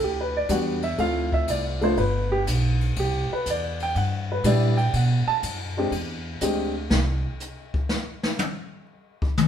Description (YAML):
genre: jazz piano trio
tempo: 122 BPM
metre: 4/4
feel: swing 69% on 8ths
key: E minor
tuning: A4 = 440 Hz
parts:
  - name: dark baby grand piano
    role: melody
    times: 0.0-6.7 s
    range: G3 to A5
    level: -24 LUFS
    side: equal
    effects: plate reverb
  - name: upright bass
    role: bass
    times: 0.0-7.2 s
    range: G1 to B2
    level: -25 LUFS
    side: equal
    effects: none
  - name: jazz brush drum kit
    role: drums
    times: 0.0-9.5 s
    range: hi-hat, kick drum, ride cymbal, snare drum, toms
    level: -28 LUFS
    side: left 2 dB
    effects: none
room: moderate studio reverb, RT60 1.0 s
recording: heard from further back in the room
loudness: -22 LUFS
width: side -9 dB against mid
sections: 0.0-9.5 A section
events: grand piano solo 0.0-9.5; drum solo 6.9-9.5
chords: 0.0 Em9; 1.0 Dm7; 2.0 G; 3.0 Cmaj9; 4.9 B5; 5.9 E7alt; 6.9 N.C.